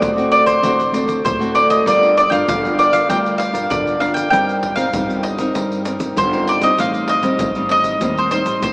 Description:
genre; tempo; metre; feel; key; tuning
samba and choro; 97 BPM; 4/4; straight; G minor; A4 = 443 Hz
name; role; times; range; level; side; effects
mandolin; melody; 0.0-8.7 s; C5 to G5; -16 LUFS; equal; none
nylon-string guitar; accompaniment; 0.0-8.7 s; A2 to Bb4; -20 LUFS; equal; none
upright bass; bass; 0.0-8.7 s; G1 to G2; -26 LUFS; equal; none
egg shaker, surdo and pandeiro; percussion; 0.0-8.7 s; none; -26 LUFS; equal; none
room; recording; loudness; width
wet cathedral reverb, RT60 5.0 s; in a vast, echoing space, small speaker sound; -14 LUFS; side -28 dB against mid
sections
0.0-8.7 A section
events
none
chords
0.0 D7; 1.9 Gm7; 4.3 Cm7/G; 6.8 Am7b5

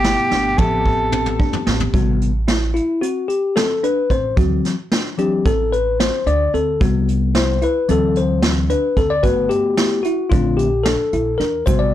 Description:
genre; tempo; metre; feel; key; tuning
progressive instrumental, band music in an uneven meter; 222 BPM (eighths); 9/8; straight; A dorian; A4 = 440 Hz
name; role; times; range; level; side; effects
mellow soprano saxophone; melody; 0.0-1.4 s; G4 to A4; -19 LUFS; right 1 dB; digital delay
mellow electric guitar; second line; 0.0-1.4 s; B2 to C3; -28 LUFS; equal; none
bell-like tine electric piano; accompaniment; 0.0-11.9 s; C3 to F#5; -18 LUFS; left 4 dB; none
thumb-piano-like synth pluck; arpeggios; 0.0-11.9 s; C4 to F#4; -26 LUFS; right 5 dB; chorus
upright bass; bass; 0.0-11.9 s; G1 to E2; -22 LUFS; right 1 dB; none
vintage brush drum kit; drums; 0.0-11.8 s; hi-hat, kick drum, snare drum, toms; -20 LUFS; right 1 dB; soft clipping on snare
egg shaker; percussion; 11.7-11.9 s; none; -39 LUFS; right 9 dB; none
room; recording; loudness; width
light reverb; blown-out, overdriven recording, overdrive; -15 LUFS; side -12 dB against mid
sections
0.0-1.9 A section; 1.9-11.9 B section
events
drum fill 0.3-1.9; tine electric piano solo 1.9-11.9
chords
0.0 Gmaj7; 0.6 Am7; 6.8 Cmaj7#11; 7.9 D7; 9.2 Gmaj7; 10.3 Bbmaj7

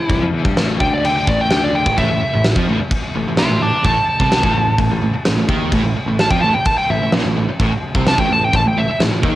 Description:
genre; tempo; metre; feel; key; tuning
hard rock; 128 BPM; 4/4; straight; A minor; A4 = 440 Hz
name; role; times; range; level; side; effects
smooth overdriven lead guitar; melody; 0.0-9.0 s; E4 to D6; -18 LUFS; equal; cassette tape, tape echo
picked electric bass; bass; 0.0-9.4 s; A1 to G2; -21 LUFS; equal; none
sludgy distorted guitar; riff; 0.1-9.4 s; A2 to G3; -25 LUFS; left 7 dB; overdrive, cassette tape
huge arena drum kit; drums; 0.1-9.3 s; crash cymbal, kick drum, snare drum; -19 LUFS; equal; cassette tape
sludgy distorted guitar; riff; 2.0-9.4 s; A2 to F3; -21 LUFS; right 5 dB; overdrive, cassette tape
tight distorted guitar; riff; 2.0-9.4 s; A2 to F3; -28 LUFS; equal; none
room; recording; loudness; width
light reverb, small room ambience; home recording on cassette; -14 LUFS; side -15 dB against mid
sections
0.0-9.4 A section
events
lead electric guitar solo 0.0-9.4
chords
0.0 Am

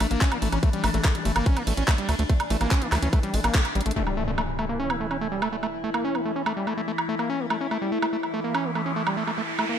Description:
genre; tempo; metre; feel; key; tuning
psychedelic trance; 144 BPM; 4/4; straight; unclear; A4 = 441 Hz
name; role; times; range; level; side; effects
evolving wavetable pad; sustained chords; 0.0-9.8 s; E3 to E4; -31 LUFS; left 2 dB; phaser, built-in reverb, sidechain pumping
overdriven acid bass; riff; 0.0-9.8 s; G3 to C#4; -28 LUFS; moving between left 6 dB and right 6 dB; distortion, auto-pan, sidechain pumping, digital delay
tight sequencer bass; bass; 0.0-3.9 s; G1 to D2; -25 LUFS; equal; none
garage drum kit; drums; 0.0-9.7 s; handclaps, hi-hat, ride cymbal, woodblock; -29 LUFS; right 2 dB; overdrive, studio reverb
electronic kick drum; drums; 0.2-3.6 s; none; -21 LUFS; equal; overdrive, studio reverb
formant-sweep wobble bass; second line; 0.9-3.2 s; E3 to A3; -41 LUFS; left 3 dB; none
impact and riser; sound effects; 4.0-9.8 s; none; -32 LUFS; equal; none
room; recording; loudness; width
light reverb, digital ambience; none; -23 LUFS; side -9 dB against mid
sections
0.0-4.0 A section; 4.0-9.8 B section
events
drop 0.0-4.0; band accent 3.5; drum fill 3.8; impact 4.0-5.6; riser 7.8-9.8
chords
0.0 A5

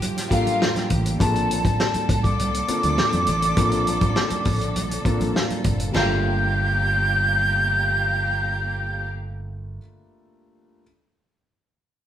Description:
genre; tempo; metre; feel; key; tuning
lush 1970s-style soul; 101 BPM; 4/4; straight; G minor; A4 = 439 Hz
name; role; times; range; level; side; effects
dark concert grand piano; accompaniment; 0.0-10.8 s; G3 to A5; -29 LUFS; left 2 dB; none
rich studio string section; sustained chords; 0.0-9.1 s; Bb2 to A4; -32 LUFS; equal; none
warm soul drum kit; drums; 0.0-6.1 s; china cymbal, hi-hat, kick drum, snare drum; -23 LUFS; equal; none
congas; percussion; 0.0-6.2 s; none; -33 LUFS; right 3 dB; none
rich studio violin section; second line; 0.3-0.9, 6.0-9.1 s; F4 to Bb5; -30 LUFS; left 1 dB; none
fingered electric bass; bass; 0.9-9.8 s; F#1 to F2; -26 LUFS; right 1 dB; none
silver concert flute; melody; 1.2-9.1 s; A5 to G6; -23 LUFS; equal; none
room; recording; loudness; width
moderate large studio reverb, RT60 0.9 s; band playing live in one room; -19 LUFS; side -10 dB against mid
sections
0.0-5.9 A section; 5.9-8.3 B section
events
grand piano fill 4.8-5.9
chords
0.0 Gm7; 1.2 Bbmaj7; 5.9 Gm7

